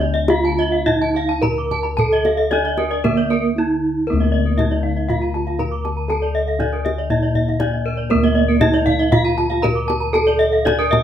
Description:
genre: Balinese gamelan.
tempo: 118 BPM.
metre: 4/4.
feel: straight.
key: D pelog.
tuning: A4 = 439 Hz.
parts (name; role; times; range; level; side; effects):
gamelan-type bronze metallophone; melody; 0.0-11.0 s; Bb3 to Bb4; -19 LUFS; right 2 dB; none.
gamelan-type bronze metallophone; arpeggios; 0.0-10.9 s; Bb4 to D6; -25 LUFS; right 4 dB; none.
gamelan-type bossed gongs; bass; 0.0-11.0 s; D2 to Bb4; -22 LUFS; left 3 dB; none.
gamelan-type bronze metallophone; arpeggios; 0.1-11.0 s; Bb4 to Bb5; -23 LUFS; left 2 dB; none.
kendang; percussion; 0.1-11.0 s; none; -23 LUFS; left 1 dB; none.
room: wet studio reverb, RT60 0.8 s.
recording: band playing live in one room.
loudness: -16 LUFS.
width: side -10 dB against mid.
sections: 0.0-4.1 A section; 4.1-11.0 B section.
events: none.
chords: none.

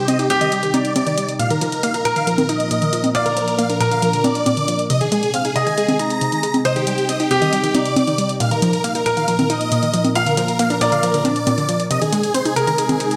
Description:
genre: uplifting trance.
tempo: 137 BPM.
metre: 4/4.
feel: straight.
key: C minor.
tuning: A4 = 440 Hz.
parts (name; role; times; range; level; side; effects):
big supersaw lead; melody; 0.0-13.2 s; G4 to Bb5; -23 LUFS; equal; none.
bright grand piano; second line; 0.0-13.2 s; G4 to F5; -24 LUFS; equal; digital delay.
lush unison pad; sustained chords; 0.0-13.2 s; Bb2 to Bb4; -27 LUFS; equal; chorus.
unison pluck; arpeggios; 0.1-13.1 s; Bb2 to Eb4; -25 LUFS; equal; digital delay.
electronic hi-hat and congas; drums; 0.1-13.2 s; none; -26 LUFS; equal; none.
swell; sound effects; 13.0-13.2 s; none; -41 LUFS; equal; none.
room: moderate lush hall reverb, RT60 1.6 s, digital ambience.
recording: none.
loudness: -18 LUFS.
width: mono.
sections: 0.0-13.2 A section.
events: none.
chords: 0.0 Cm; 1.4 Ebsus2; 3.1 Bb; 4.9 Ab; 6.7 Cm; 8.4 Ebsus2; 10.2 Bb; 11.9 Ab.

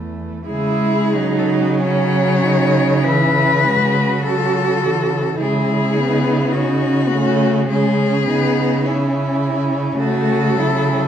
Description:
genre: classical, lyrical piece for cello ensemble.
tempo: 43-54 BPM.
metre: 4/4.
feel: rubato.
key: C# minor.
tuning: A4 = 440 Hz.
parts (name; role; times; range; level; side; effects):
warm cello; second line; 0.0-11.1 s; A3 to F#4; -21 LUFS; right 7 dB; none.
rich cello; accompaniment; 0.0-11.1 s; E3 to C#4; -20 LUFS; left 3 dB; none.
warm cello; bass; 0.0-11.1 s; E2 to C#3; -20 LUFS; right 2 dB; none.
warm cello; melody; 0.5-11.1 s; F#4 to C#5; -20 LUFS; left 5 dB; none.
room: wet recital hall reverb, RT60 1.6 s.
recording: none.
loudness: -14 LUFS.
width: side -9 dB against mid.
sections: 0.5-11.1 A section.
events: none.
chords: 0.5 C#m; 10.0 A/C#.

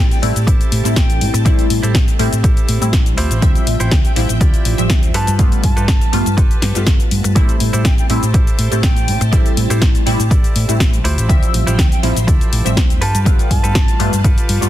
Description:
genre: filtered disco house.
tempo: 122 BPM.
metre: 4/4.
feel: straight.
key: A minor.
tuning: A4 = 440 Hz.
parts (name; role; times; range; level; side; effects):
mellow silver concert flute; melody; 0.0-14.2 s; G5 to A5; -26 LUFS; right 3 dB; sidechain pumping, digital delay.
funky polysynth comp; accompaniment; 0.0-14.7 s; F3 to E5; -22 LUFS; equal; chorus, phaser, sidechain pumping.
string machine, full ensemble; sustained chords; 0.0-14.7 s; F3 to A5; -27 LUFS; equal; ensemble chorus, vintage 12-bit sampler grit, sidechain pumping.
hollow-body short-scale fingered electric bass; bass; 0.0-14.7 s; G1 to A2; -18 LUFS; equal; sidechain pumping.
direct-recorded clean electric guitar; riff; 0.1-14.7 s; E4 to D5; -26 LUFS; right 3 dB; sidechain pumping.
punchy analog drum machine; drums; 0.1-14.7 s; hi-hat, shaker, snare drum; -22 LUFS; left 2 dB; sidechain pumping on hats, sidechain pumping on cymbals, sidechain pumping on perc.
electronic kick drum; drums; 0.5-14.3 s; none; -14 LUFS; equal; none.
room: little or no reverb.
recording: dense, heavily limited modern master.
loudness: -12 LUFS.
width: side -13 dB against mid.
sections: 0.0-14.7 A section.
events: none.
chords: 0.0 Am7; 3.2 Dm11; 5.1 G9; 7.4 Am7; 11.0 Dm11; 13.0 G9.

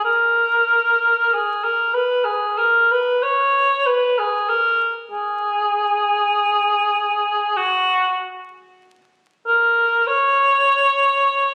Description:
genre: classical, free, expressive piece for unaccompanied cor anglais.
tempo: 44-51 BPM.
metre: 4/4.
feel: rubato.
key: unclear.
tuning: A4 = 439 Hz.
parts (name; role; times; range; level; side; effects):
warm cor anglais; solo; 0.0-11.5 s; F#4 to C#5; -18 LUFS; equal; none.
room: moderate scoring stage reverb, RT60 1.7 s.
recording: recorded on a phone in the room, studio reverb, vinyl crackle.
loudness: -18 LUFS.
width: mono.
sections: 0.1-11.5 A section.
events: none.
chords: none.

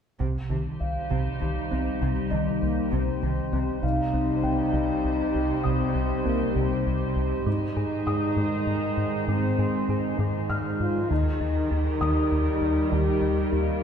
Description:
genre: cinematic.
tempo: 66 BPM (dotted quarters).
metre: 6/8.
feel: straight.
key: C minor.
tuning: A4 = 437 Hz.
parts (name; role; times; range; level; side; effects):
glassy FM pad; sustained chords; 0.8-13.8 s; Eb3 to C5; -30 LUFS; equal; ensemble chorus, built-in reverb.
thumb-piano-like synth pluck; arpeggios; 0.2-13.7 s; C3 to Ab4; -32 LUFS; right 2 dB; chorus, tape echo.
rubbery square bass; riff; 0.2-13.7 s; C2 to Ab2; -28 LUFS; equal; none.
rich symphonic cello section; bass; 0.2-13.8 s; Ab2 to Eb3; -32 LUFS; right 3 dB; none.
felt-muted upright piano; texture; 0.8-13.8 s; Eb5 to F6; -36 LUFS; left 2 dB; tape echo.
warm French horn section; sustained chords; 2.6-13.8 s; Ab3 to G4; -28 LUFS; left 3 dB; none.
room: wet recital hall reverb, RT60 1.4 s.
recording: heard from further back in the room.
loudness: -23 LUFS.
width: side -7 dB against mid.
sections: 0.2-3.8 A section; 3.8-13.8 B section.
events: none.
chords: 0.2 Cm; 7.5 Ab; 11.1 Eb.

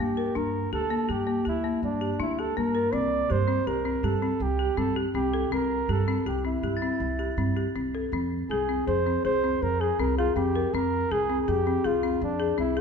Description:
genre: contemporary instrumental, chamber music in an uneven meter.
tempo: 162 BPM.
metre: 7/4.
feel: straight.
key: unclear.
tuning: A4 = 441 Hz.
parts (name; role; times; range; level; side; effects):
mellow flugelhorn; melody; 0.0-12.8 s; D4 to D5; -29 LUFS; right 5 dB; none.
folk marimba with hard mallets; arpeggios; 0.0-12.8 s; Bb3 to Bb4; -27 LUFS; left 5 dB; none.
upright bass; bass; 0.0-12.8 s; C2 to G2; -31 LUFS; right 2 dB; none.
glockenspiel with rubber mallets; texture; 6.8-7.8 s; A6; -39 LUFS; right 2 dB; none.
room: moderate concert hall reverb, RT60 2.4 s.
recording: minimal, uncompressed stereo recording.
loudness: -24 LUFS.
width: side -6 dB against mid.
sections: 0.0-12.8 A section.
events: none.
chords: 0.0 Gm; 2.9 C; 8.1 Fm.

